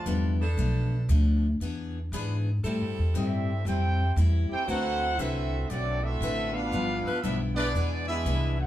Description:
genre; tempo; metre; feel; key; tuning
jazz, big band swing; 117 BPM; 4/4; swing 67% on 8ths; G major; A4 = 441 Hz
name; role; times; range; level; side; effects
clear trumpet section; melody; 0.0-8.7 s; B3 to A5; -32 LUFS; right 1 dB; none
clear trombone section; second line; 0.0-8.7 s; D3 to G4; -34 LUFS; right 2 dB; none
upright bass; bass; 0.0-8.7 s; G1 to A2; -27 LUFS; equal; none
picked steel-string acoustic guitar; accompaniment; 0.1-8.6 s; G2 to B4; -34 LUFS; left 4 dB; none
clear saxophone section; sustained chords; 0.4-7.7 s; E3 to C5; -35 LUFS; right 1 dB; none
room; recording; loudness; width
wet studio reverb, RT60 0.5 s; band playing live in one room; -25 LUFS; side -13 dB against mid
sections
0.0-8.7 A section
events
none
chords
0.0 G13; 0.6 Bm7b5; 1.6 E7; 2.6 Am7; 4.7 D13; 6.7 G13; 7.7 E7

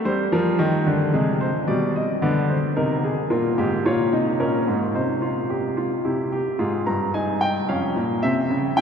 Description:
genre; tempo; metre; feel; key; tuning
classical, baroque-style 3-part fugue for grand piano; 110 BPM; 3/4; straight; C minor, F minor from 3.3 s; A4 = 440 Hz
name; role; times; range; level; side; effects
warm baby grand piano; solo; 0.0-8.8 s; F2 to Bb5; -20 LUFS; equal; none
room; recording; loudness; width
wet cathedral reverb, RT60 6.1 s; none; -20 LUFS; side -7 dB against mid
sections
0.0-3.3 A section; 3.3-6.6 B section; 6.6-8.8 C section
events
none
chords
0.1 Cm; 1.1 Ab/C; 1.7 G/B; 2.8 Cm; 3.3 Gm7b5; 5.0 Csus4; 6.0 C; 6.6 Fm; 7.7 Bbm/F; 8.2 C

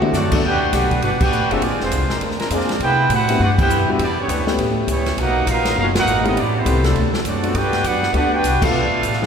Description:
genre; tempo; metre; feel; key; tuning
jazz, big band swing; 202 BPM; 4/4; swing 62% on 8ths; G major; A4 = 441 Hz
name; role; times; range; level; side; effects
clear concert grand piano; accompaniment; 0.0-9.3 s; F3 to A4; -24 LUFS; left 2 dB; none
upright bass; bass; 0.0-9.3 s; F1 to C3; -22 LUFS; equal; none
swinging big-band drum kit; drums; 0.0-9.3 s; crash cymbal, hi-hat, kick drum, ride cymbal, snare drum, toms; -23 LUFS; equal; none
clear trumpet section; melody; 0.1-9.3 s; Ab3 to G5; -20 LUFS; right 1 dB; none
bright trombone section; second line; 0.1-9.3 s; D3 to G4; -24 LUFS; right 2 dB; none
clear trombone section; sustained chords; 2.1-8.9 s; F3 to B4; -29 LUFS; left 2 dB; none
room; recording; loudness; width
wet church reverb, RT60 3.6 s; recorded in a church or concert hall; -15 LUFS; side -7 dB against mid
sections
0.4-9.3 A section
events
band accent 1.2, 3.5, 5.9, 8.6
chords
0.4 Gmaj7; 1.6 Bb9; 2.8 Cmaj7; 4.0 Em7; 4.6 A9; 5.2 Bmaj7; 6.4 Am7; 7.0 D7; 7.5 Gmaj7; 8.7 Bm7b5

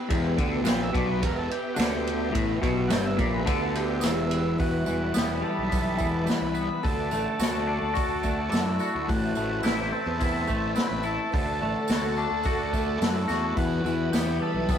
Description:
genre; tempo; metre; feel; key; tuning
psychedelic rock; 107 BPM; 4/4; straight; E minor; A4 = 440 Hz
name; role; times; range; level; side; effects
phased string machine; sustained chords; 0.0-14.8 s; G3 to B5; -32 LUFS; right 3 dB; ensemble chorus, phaser
twangy electric guitar; riff; 0.1-14.8 s; E2 to F#4; -28 LUFS; left 2 dB; rotary speaker
fuzz fingered electric bass; bass; 0.1-14.8 s; E1 to F#2; -31 LUFS; equal; overdrive
vintage drum kit; drums; 0.1-14.8 s; hi-hat, kick drum, ride cymbal, snare drum; -29 LUFS; equal; none
tambourine; percussion; 0.6-14.8 s; none; -44 LUFS; right 6 dB; none
combo organ; melody; 0.7-14.8 s; D#4 to G5; -33 LUFS; equal; none
room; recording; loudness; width
moderate stone room reverb, RT60 1.1 s; rough rehearsal-room recording; -24 LUFS; side -8 dB against mid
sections
0.0-4.6 A section; 4.6-14.8 B section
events
transistor combo organ solo 0.0-4.6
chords
0.0 Em; 6.8 D; 9.1 Amadd9; 11.3 D; 13.6 Em

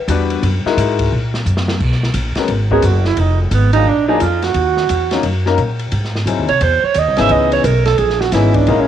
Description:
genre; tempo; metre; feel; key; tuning
jazz, small-group swing and bop; 175 BPM; 4/4; swing 64% on 8ths; G# minor; A4 = 440 Hz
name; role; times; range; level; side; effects
clear baby grand piano; accompaniment; 0.1-8.9 s; E3 to B4; -18 LUFS; left 8 dB; cassette tape
upright bass; bass; 0.1-8.9 s; F1 to A#2; -16 LUFS; equal; none
open jazz drum kit; drums; 0.1-8.8 s; crash cymbal, hi-hat, kick drum, ride cymbal, snare drum; -24 LUFS; equal; cassette tape
breathy alto saxophone; second line; 2.7-8.9 s; Ab3 to E5; -15 LUFS; right 8 dB; cassette tape
room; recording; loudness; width
light reverb, small room ambience; home recording on cassette; -13 LUFS; side -10 dB against mid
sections
0.0-1.8 A section; 1.8-8.9 A section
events
drum fill 1.5-1.8; alto saxophone solo 1.8-8.9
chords
0.4 F#13; 1.8 G#m11; 3.2 Fm7b5; 3.9 A#7b13; 4.6 D#m7; 5.9 G#7b13; 7.3 C#m9

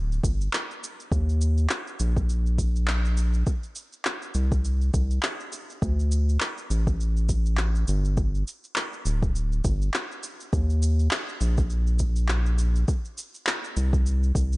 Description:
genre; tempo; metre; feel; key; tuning
sunset chillout; 102 BPM; 4/4; swing 57% on 16ths; unclear; A4 = 440 Hz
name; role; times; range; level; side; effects
round analog bass; bass; 0.0-14.6 s; D1 to Eb2; -22 LUFS; equal; none
electronic shaker and handclaps; drums; 0.1-14.6 s; none; -30 LUFS; equal; overdrive
electronic kick drum; drums; 0.2-14.5 s; none; -26 LUFS; equal; overdrive
room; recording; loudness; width
little or no reverb; nothing above 10.3 kHz; -23 LUFS; side -22 dB against mid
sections
0.0-14.6 A section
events
none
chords
none

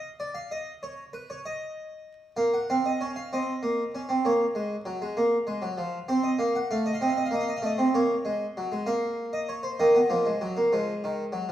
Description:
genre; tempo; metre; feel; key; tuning
classical, baroque-style 3-part fugue for harpsichord; 65 BPM (dotted quarters); 12/8; straight; unclear; A4 = 440 Hz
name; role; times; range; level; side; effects
harpsichord; solo; 0.0-11.5 s; Eb3 to Gb5; -25 LUFS; right 1 dB; none
room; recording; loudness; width
moderate recital hall reverb, RT60 1.6 s; vinyl crackle, small room ambience; -24 LUFS; side -12 dB against mid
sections
0.0-11.5 A section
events
none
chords
0.0 N.C.; 2.4 Bbm; 6.1 F7; 8.0 Bbm; 9.8 Ebm

